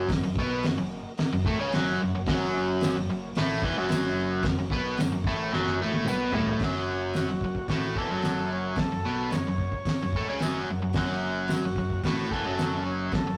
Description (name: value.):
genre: garage rock duo or trio.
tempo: 111 BPM.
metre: 4/4.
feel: straight.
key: F# major.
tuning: A4 = 440 Hz.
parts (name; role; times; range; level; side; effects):
combo organ; sustained chords; 0.0-13.4 s; F#4 to A#5; -46 LUFS; equal; none.
biting overdriven guitar; riff; 0.0-13.4 s; E2 to C#4; -30 LUFS; equal; none.
fuzz fingered electric bass; bass; 0.0-13.4 s; E1 to C#2; -40 LUFS; equal; overdrive.
cloth-damped thuddy drum kit; drums; 0.1-13.3 s; hi-hat, kick drum, snare drum, toms; -32 LUFS; equal; none.
tambourine; percussion; 2.8-12.7 s; none; -52 LUFS; equal; none.
overdriven combo organ; melody; 7.2-13.4 s; F#4 to C#5; -36 LUFS; equal; none.
room: moderate stone room reverb, RT60 0.9 s.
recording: rough rehearsal-room recording, tube saturation.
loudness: -28 LUFS.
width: mono.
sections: 0.0-6.6 A section; 6.6-13.4 B section.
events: transistor combo organ fill 1.2-2.3, 9.9-11.0; drum fill 5.5-6.6; transistor combo organ solo 6.6-13.4.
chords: 0.0 F#.